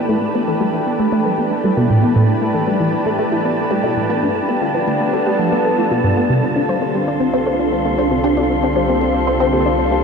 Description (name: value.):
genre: ambient, sequencer-driven space music.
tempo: 116 BPM.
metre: 4/4.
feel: straight.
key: unclear.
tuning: A4 = 440 Hz.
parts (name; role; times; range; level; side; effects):
lush unison pad; sustained chords; 0.0-10.0 s; D3 to B4; -18 LUFS; left 1 dB; chorus, shimmer reverb.
warbly dusty pluck; arpeggios; 0.0-10.0 s; A3 to C5; -22 LUFS; left 1 dB; chorus, auto-pan, tape echo, shimmer reverb.
resonant blip pluck; riff; 0.0-10.0 s; G2 to D4; -18 LUFS; right 1 dB; phaser, tape echo, shimmer reverb.
wind-like tuned noise texture; texture; 0.0-10.0 s; A5 to C6; -27 LUFS; right 2 dB; built-in reverb, shimmer reverb.
round analog bass; bass; 6.3-10.0 s; C2; -25 LUFS; equal; none.
room: wet huge ambient reverb, RT60 7.4 s.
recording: none.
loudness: -14 LUFS.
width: side -5 dB against mid.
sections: 0.0-6.3 A section; 6.3-10.0 B section.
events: none.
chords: 0.0 Asus2; 4.2 G7; 6.3 Csus2.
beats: | 0.09 0.61 1.13 1.64 | 2.16 2.68 3.19 3.71 | 4.23 4.75 5.26 5.78 | 6.30 6.82 7.33 7.85 | 8.37 8.88 9.40 9.92.